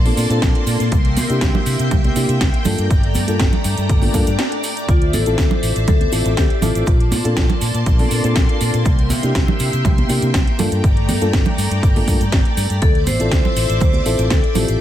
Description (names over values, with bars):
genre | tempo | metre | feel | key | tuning
nu-disco, nu disco | 121 BPM | 4/4 | straight | D minor | A4 = 439 Hz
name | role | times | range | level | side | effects
string machine, full ensemble | sustained chords | 0.0-14.8 s | A3 to D6 | -24 LUFS | equal | ensemble chorus, sidechain pumping
fingered electric bass | bass | 0.0-14.8 s | G1 to C3 | -19 LUFS | equal | none
mellow reed electric piano | accompaniment | 0.1-14.8 s | Bb3 to A4 | -24 LUFS | left 1 dB | fast tremolo, sidechain pumping, ping-pong delay
house drum kit | drums | 0.1-14.8 s | hi-hat, snare drum | -24 LUFS | right 1 dB | studio reverb
congas and cabasa | percussion | 0.1-14.8 s | none | -25 LUFS | right 5 dB | none
electronic kick drum | drums | 0.4-14.4 s | none | -16 LUFS | equal | studio reverb
swell | sound effects | 4.1-4.9 s | none | -29 LUFS | left 3 dB | none
vibraphone with medium mallets | melody | 4.9-7.6, 12.8-14.8 s | F4 to C5 | -24 LUFS | left 4 dB | tape echo
room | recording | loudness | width
little or no reverb | none | -14 LUFS | side -12 dB against mid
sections
0.0-14.8 A section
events
swell 4.1-4.9; break 4.4-4.9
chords
0.0 Bbmaj9; 0.9 C7; 2.7 Gm9; 4.9 Dm9; 6.9 Bbmaj9; 8.9 C7; 10.6 Gm9; 12.8 Dm9